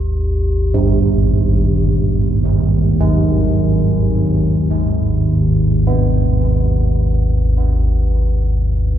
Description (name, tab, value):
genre	dark ambient drone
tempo	free time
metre	none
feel	none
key	G# harmonic minor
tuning	A4 = 441 Hz
part	analog drone	drone	0.0-9.0 s	G#1 to D#2	-15 LUFS	equal	lush chorus
part	bronze singing bowl	texture	0.0-9.0 s	G4	-30 LUFS	left 2 dB	none
part	carillon bells	arpeggios	0.7-9.0 s	G2 to B3	-18 LUFS	right 3 dB	tape echo
room	wet cathedral reverb, RT60 5.2 s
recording	in a vast, echoing space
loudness	-13 LUFS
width	side -10 dB against mid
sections	0.0-9.0 A section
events	none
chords	0.0 G#m